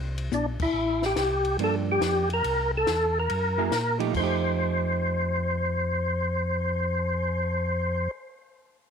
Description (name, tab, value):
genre	soul jazz organ trio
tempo	141 BPM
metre	4/4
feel	swing 66% on 8ths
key	F mixolydian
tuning	A4 = 440 Hz
part	mellow tonewheel organ	bass	0.0-8.1 s	A1 to Bb2	-29 LUFS	equal	overdrive, chorus vibrato, slow rotary speaker
part	compact cocktail drum kit	drums	0.2-7.5 s	crash cymbal, cymbal swell, hi-hat, kick drum, ride cymbal, snare drum, toms	-35 LUFS	left 6 dB	none
part	percussive tonewheel organ	melody	0.3-8.1 s	D4 to C5	-26 LUFS	left 1 dB	slow rotary speaker, chorus vibrato
part	hollow-body jazz guitar	accompaniment	1.6-8.2 s	F3 to Ab4	-31 LUFS	right 13 dB	none
room	moderate spring reverb, RT60 1.8 s, small room ambience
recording	1960s-style stereo with parts hard left and right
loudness	-24 LUFS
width	side -7 dB against mid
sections	0.7-4.1 A section; 4.1-7.6 B section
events	drum fill 0.3-0.7; band accent 0.5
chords	0.0 Bbadd9; 0.7 Am7; 1.6 Gm7; 2.4 C; 3.3 Gb9; 4.1 F9